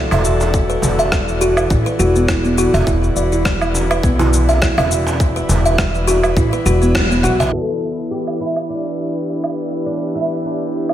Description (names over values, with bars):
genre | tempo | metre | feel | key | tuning
organic downtempo | 103 BPM | 4/4 | swing 55% on 16ths | E minor | A4 = 440 Hz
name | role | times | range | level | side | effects
airy breathy pad | sustained chords | 0.0-10.9 s | E3 to D5 | -22 LUFS | equal | chorus, sidechain pumping
kalimba | arpeggios | 0.0-7.5 s | B3 to E5 | -19 LUFS | right 1 dB | digital delay, slapback echo
upright bass | bass | 0.0-7.5 s | E1 to B1 | -18 LUFS | equal | sidechain pumping
bronze singing bowl | texture | 0.0-10.9 s | E3 to B4 | -33 LUFS | left 4 dB | none
electronic woodblock, shaker and rim click | drums | 0.1-10.9 s | none | -22 LUFS | equal | overdrive, low-pass filter on perc, small room ambience, low-pass filter on snare, slapback echo
cajon | percussion | 0.1-7.5 s | none | -24 LUFS | right 2 dB | none
electronic kick drum | drums | 0.5-7.1 s | none | -20 LUFS | equal | small room ambience
oud | melody | 7.2-10.9 s | D4 to A4 | -23 LUFS | equal | tape echo, slapback echo
room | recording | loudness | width
wet recital hall reverb, RT60 1.6 s, studio reverb | big arena sound, low-pass filter | -14 LUFS | side -11 dB against mid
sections
0.0-7.5 A section; 7.5-10.9 B section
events
band accent 6.9; filter sweep 7.5-10.9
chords
0.0 Bm7/E; 7.5 Em7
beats
| 0.54 1.12 1.71 2.29 | 2.87 3.45 4.04 4.62 | 5.20 5.78 6.37 6.95 | 7.53 8.11 8.70 9.28 | 9.86 10.44